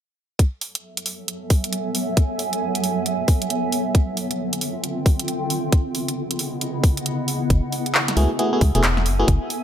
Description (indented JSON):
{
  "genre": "UK garage, two-step garage",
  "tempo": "135 BPM",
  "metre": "4/4",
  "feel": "swing 62% on 16ths",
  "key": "F# minor",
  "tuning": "A4 = 439 Hz",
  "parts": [
    { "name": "electronic kick drum", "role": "drums", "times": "0.4-9.4 s", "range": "none", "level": "-16 LUFS", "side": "equal", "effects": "none" },
    { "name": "house drum kit", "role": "drums", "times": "0.4-9.6 s", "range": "handclaps, hi-hat, snare drum", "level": "-24 LUFS", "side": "right 1 dB", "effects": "overdrive" },
    { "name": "granular cloud pad", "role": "texture", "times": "1.1-9.6 s", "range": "C#3 to G#5", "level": "-25 LUFS", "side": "right 1 dB", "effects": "built-in reverb, sidechain pumping" },
    { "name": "organ-like FM bass", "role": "bass", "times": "7.5-9.4 s", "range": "E1 to C#2", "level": "-20 LUFS", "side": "equal", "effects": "tube saturation, sidechain pumping" },
    { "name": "FM electric piano", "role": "stabs", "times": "8.2-9.3 s", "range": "A3 to G#4", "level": "-22 LUFS", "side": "equal", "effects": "chorus, dub echo" }
  ],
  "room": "light reverb, digital ambience",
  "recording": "none",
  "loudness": "-19 LUFS",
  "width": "side -10 dB against mid",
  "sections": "0.4-9.6 A section",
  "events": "none",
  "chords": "0.4 F#m11; 3.9 Dm11; 5.5 C#m11; 7.5 F#m11"
}